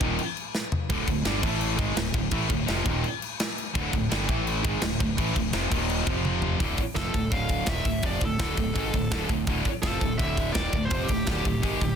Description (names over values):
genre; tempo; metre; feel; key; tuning
heavy metal; 168 BPM; 4/4; straight; D minor; A4 = 440 Hz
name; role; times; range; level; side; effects
distorted electric guitar; riff; 0.0-6.6 s; D2 to A3; -33 LUFS; equal; overdrive
heavy high-gain guitar; riff; 0.0-12.0 s; D2 to A3; -31 LUFS; left 13 dB; distortion
heavy high-gain guitar; riff; 0.0-12.0 s; D2 to A3; -31 LUFS; right 10 dB; distortion
fuzz fingered electric bass; bass; 0.0-12.0 s; D1 to A1; -31 LUFS; equal; overdrive
tight metal drum kit; drums; 0.0-11.9 s; crash cymbal, hi-hat, kick drum, snare drum, toms; -28 LUFS; equal; none
high-gain lead guitar; melody; 7.0-12.0 s; G4 to F5; -32 LUFS; equal; distortion
room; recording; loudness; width
studio ambience; dense, heavily limited modern master; -24 LUFS; side -7 dB against mid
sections
0.0-6.6 A section; 6.6-12.0 B section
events
drum fill 0.5-0.9, 6.3-6.6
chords
0.0 D5; 1.4 A5; 1.8 Dm; 4.3 A5; 4.6 Dm; 5.7 Eb5; 6.1 F5; 6.6 Dm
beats
0.18 0.54 | 0.90 1.25 1.61 1.97 | 2.32 2.68 3.04 3.39 | 3.75 4.11 4.47 4.82 | 5.18 5.54 5.89 6.25 | 6.61 6.97 7.33 7.68 | 8.04 8.40 8.76 9.12 | 9.48 9.84 10.19 10.55 | 10.91 11.27 11.63